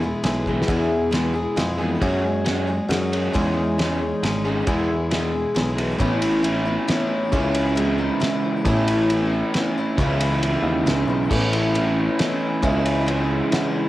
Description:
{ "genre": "folk rock and heartland rock", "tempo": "136 BPM", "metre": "3/4", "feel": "straight", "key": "unclear", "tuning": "A4 = 440 Hz", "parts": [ { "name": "picked twelve-string acoustic guitar", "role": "accompaniment", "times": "0.0-13.9 s", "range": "E2 to G#4", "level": "-24 LUFS", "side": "left 2 dB", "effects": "plate reverb" }, { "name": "crunchy overdriven guitar", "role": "riff", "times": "0.0-13.9 s", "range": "E2 to E4", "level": "-25 LUFS", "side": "right 2 dB", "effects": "none" }, { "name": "picked electric bass", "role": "bass", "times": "0.0-13.4 s", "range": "G#1 to F#2", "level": "-25 LUFS", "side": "equal", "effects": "tube saturation" }, { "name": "cloth-damped thuddy drum kit", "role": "drums", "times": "0.2-13.6 s", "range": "crash cymbal, kick drum, ride cymbal, snare drum", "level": "-26 LUFS", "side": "equal", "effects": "cassette tape" }, { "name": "dark concert grand piano", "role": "accompaniment", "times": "11.3-13.9 s", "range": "E4 to F#5", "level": "-29 LUFS", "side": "right 2 dB", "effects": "plate reverb" } ], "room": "moderate studio reverb, RT60 0.6 s", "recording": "home recording on cassette", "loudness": "-19 LUFS", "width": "side -15 dB against mid", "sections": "0.0-6.0 A section; 6.0-13.9 B section", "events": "drum fill 0.5", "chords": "0.0 E; 2.0 F#sus2; 3.3 C#madd9/E; 4.7 E; 6.0 Aadd9; 7.3 C#madd9; 8.7 Aadd9; 10.0 C#madd9; 11.3 Aadd9; 12.6 C#madd9" }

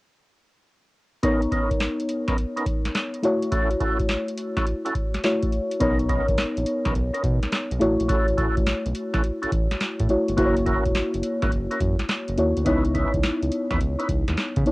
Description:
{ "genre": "R&B, new jack swing", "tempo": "105 BPM", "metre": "4/4", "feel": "swing 67% on 16ths", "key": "B major", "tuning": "A4 = 442 Hz", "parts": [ { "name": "mellow FM electric piano", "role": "accompaniment", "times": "1.2-14.7 s", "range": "A3 to C#5", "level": "-24 LUFS", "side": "left 1 dB", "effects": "chorus, cassette tape" }, { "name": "percussive tonewheel organ", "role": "stabs", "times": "1.2-14.1 s", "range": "B3 to B4", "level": "-29 LUFS", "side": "right 1 dB", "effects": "overdrive, chorus vibrato, slow rotary speaker, cassette tape" }, { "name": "booming analog drum machine", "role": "drums", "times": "1.2-14.7 s", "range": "handclaps, hi-hat, kick drum, snare drum", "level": "-25 LUFS", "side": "equal", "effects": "cassette tape" }, { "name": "round analog bass", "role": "bass", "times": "5.8-14.6 s", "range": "E1 to C#3", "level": "-26 LUFS", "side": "equal", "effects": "none" } ], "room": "light reverb", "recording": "home recording on cassette", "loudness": "-21 LUFS", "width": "side -21 dB against mid", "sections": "1.2-5.8 A section; 5.8-14.7 B section", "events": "none", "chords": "1.2 Bmaj9; 3.2 A6; 5.8 Bmaj9; 7.8 A6; 10.4 F#7; 12.7 C#m9" }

